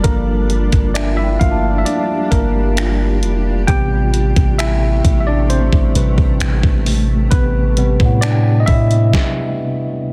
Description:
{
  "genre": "contemporary R&B",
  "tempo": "66 BPM",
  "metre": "4/4",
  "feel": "straight",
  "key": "unclear",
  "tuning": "A4 = 441 Hz",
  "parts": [
    { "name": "mellow tine electric piano", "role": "accompaniment", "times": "0.0-10.1 s", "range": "C3 to G5", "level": "-21 LUFS", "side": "equal", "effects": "overdrive" },
    { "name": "granular cloud pad", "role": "sustained chords", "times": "0.0-9.1 s", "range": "C3 to D5", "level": "-28 LUFS", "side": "equal", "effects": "built-in reverb" },
    { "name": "long sustained 808-style bass", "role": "bass", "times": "0.0-9.1 s", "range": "F1 to A2", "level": "-18 LUFS", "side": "equal", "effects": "none" },
    { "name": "detuned 8-bit digital drum machine", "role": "drums", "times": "0.0-9.4 s", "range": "finger snaps, hi-hat, kick drum, snare drum", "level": "-19 LUFS", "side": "equal", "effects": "soft clipping on snare" },
    { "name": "large celesta", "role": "texture", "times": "0.9-10.1 s", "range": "B4 to A5", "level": "-31 LUFS", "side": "equal", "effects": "delay" }
  ],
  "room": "little or no reverb",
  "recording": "dense, heavily limited modern master",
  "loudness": "-15 LUFS",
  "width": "mono",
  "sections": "0.0-10.1 A section",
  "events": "tine electric piano solo 0.0-10.1; stop 9.1-10.1",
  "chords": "0.0 Gm9; 3.7 Am9"
}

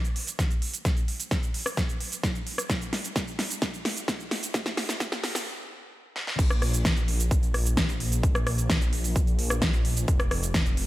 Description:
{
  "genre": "EDM, festival progressive house",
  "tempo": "130 BPM",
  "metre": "4/4",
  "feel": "straight",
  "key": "unclear",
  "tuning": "A4 = 440 Hz",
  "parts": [
    { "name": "big-room dance drum kit", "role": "drums", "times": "0.0-10.9 s", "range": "crash cymbal, hi-hat, rim click, shaker, snare drum", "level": "-29 LUFS", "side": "equal", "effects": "none" },
    { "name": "electronic kick drum", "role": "drums", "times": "0.4-10.6 s", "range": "none", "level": "-26 LUFS", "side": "equal", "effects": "none" },
    { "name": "wide detuned saw bass", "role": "bass", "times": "6.4-10.9 s", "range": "F1 to Bb1", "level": "-28 LUFS", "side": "equal", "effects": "chorus, sidechain pumping" }
  ],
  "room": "light reverb",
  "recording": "high-pass filter",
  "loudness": "-24 LUFS",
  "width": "side -16 dB against mid",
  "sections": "0.0-6.4 A section; 6.4-10.9 B section",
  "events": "build-up 0.0-6.4; drum fill 0.0-5.5, 6.2; filter sweep 0.0-6.4; stop 5.5-6.4; drop 6.4-10.9",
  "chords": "none"
}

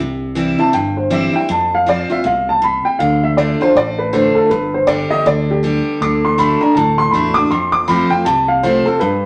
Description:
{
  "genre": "country",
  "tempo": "160 BPM",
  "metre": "4/4",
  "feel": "swing 61% on 8ths",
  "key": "C major",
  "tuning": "A4 = 444 Hz",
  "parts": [
    { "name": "picked steel-string acoustic guitar", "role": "accompaniment", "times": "0.0-9.3 s", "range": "F2 to G4", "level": "-20 LUFS", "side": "equal", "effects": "none" },
    { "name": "fingered electric bass", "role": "bass", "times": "0.0-9.3 s", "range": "G1 to G2", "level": "-25 LUFS", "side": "equal", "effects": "none" },
    { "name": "dark upright piano", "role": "second line", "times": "0.6-9.2 s", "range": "G4 to D6", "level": "-17 LUFS", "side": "equal", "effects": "none" }
  ],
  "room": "wet studio reverb, RT60 0.7 s",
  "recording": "none",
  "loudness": "-15 LUFS",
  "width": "mono",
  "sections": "0.0-9.3 A section",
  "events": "upright piano solo 0.0-9.3",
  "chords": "0.0 C; 1.5 Fsus2; 3.0 Dm; 4.5 G; 6.0 D; 7.5 F"
}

